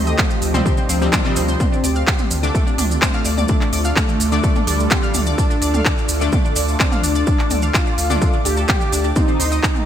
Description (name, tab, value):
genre	melodic techno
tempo	127 BPM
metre	4/4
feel	straight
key	D phrygian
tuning	A4 = 440 Hz
part	wide unison lead	melody	0.0-9.9 s	F3 to G4	-24 LUFS	left 1 dB	ensemble chorus, sidechain pumping, ping-pong delay
part	lush unison pad	sustained chords	0.0-9.9 s	A3 to Eb5	-28 LUFS	equal	chorus, phaser, vintage 12-bit sampler grit, sidechain pumping
part	round analog bass	bass	0.0-9.6 s	D2	-21 LUFS	equal	sidechain pumping
part	granular cloud pad	texture	0.0-9.9 s	C4 to D6	-30 LUFS	right 1 dB	built-in reverb, ensemble chorus, sidechain pumping
part	analog pluck	arpeggios	0.1-9.6 s	G3 to F6	-26 LUFS	left 1 dB	chorus, sidechain pumping, ping-pong delay
part	maracas	percussion	0.1-9.8 s	none	-28 LUFS	right 3 dB	none
part	electronic kick drum	drums	0.2-9.7 s	none	-19 LUFS	equal	none
part	techno drum kit	drums	0.2-9.8 s	handclaps, hi-hat, toms	-22 LUFS	equal	none
part	synth brass stab	stabs	0.5-9.1 s	C3 to D4	-27 LUFS	left 4 dB	chorus, sidechain pumping, ping-pong delay
part	swell	sound effects	0.9-1.6 s	none	-32 LUFS	left 1 dB	none
room	light reverb, digital ambience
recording	bright 1980s-style digital production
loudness	-15 LUFS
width	side -10 dB against mid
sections	0.0-9.9 A section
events	none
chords	0.0 Cm/D; 1.6 Dm; 9.2 Cm